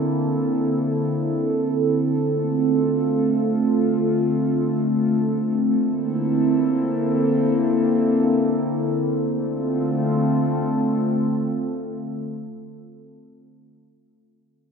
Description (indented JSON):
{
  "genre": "hip hop",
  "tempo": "free time",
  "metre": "none",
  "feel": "none",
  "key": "D minor",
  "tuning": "A4 = 440 Hz",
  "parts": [
    { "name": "warbly tape-like pad", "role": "solo", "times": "0.0-13.2 s", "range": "D3 to A4", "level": "-19 LUFS", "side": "equal", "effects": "chorus, built-in reverb, phaser" }
  ],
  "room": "moderate lush hall reverb, RT60 2.5 s",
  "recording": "rough home demo mix, nothing above 7.6 kHz",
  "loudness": "-19 LUFS",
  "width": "side -6 dB against mid",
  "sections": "0.0-9.3 A section; 9.3-12.8 B section",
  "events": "none",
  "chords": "0.0 C13; 2.2 Dm7; 5.8 C13; 9.3 Dm7"
}